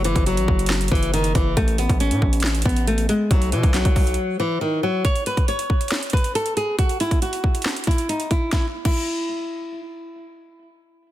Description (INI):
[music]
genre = hip hop, trap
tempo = 138 BPM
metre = 4/4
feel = half-time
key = unclear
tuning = A4 = 443 Hz
[part]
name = flamenco guitar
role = melody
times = 0.0-9.8 s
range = D#3 to C#5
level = -23 LUFS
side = left 1 dB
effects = tape echo
[part]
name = distorted 808-style bass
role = bass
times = 0.0-4.2 s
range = F#1 to B2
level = -22 LUFS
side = equal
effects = distortion
[part]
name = trap drum kit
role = drums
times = 0.0-9.0 s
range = crash cymbal, handclaps, hi-hat, kick drum, snare drum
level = -21 LUFS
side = equal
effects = none
[sound]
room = digital ambience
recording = dense, heavily limited modern master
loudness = -18 LUFS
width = side -14 dB against mid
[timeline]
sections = 0.0-5.0 A section; 5.0-8.5 B section; 8.5-11.1 C section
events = break 4.2-5.0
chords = 0.0 N.C.; 1.6 A; 3.3 B5; 5.0 N.C.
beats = 0.26 0.70 1.13 | 1.57 2.00 2.44 2.87 | 3.31 3.74 4.18 4.61 | 5.05 5.48 5.92 6.35 | 6.79 7.22 7.66 8.09 | 8.53 8.96 9.39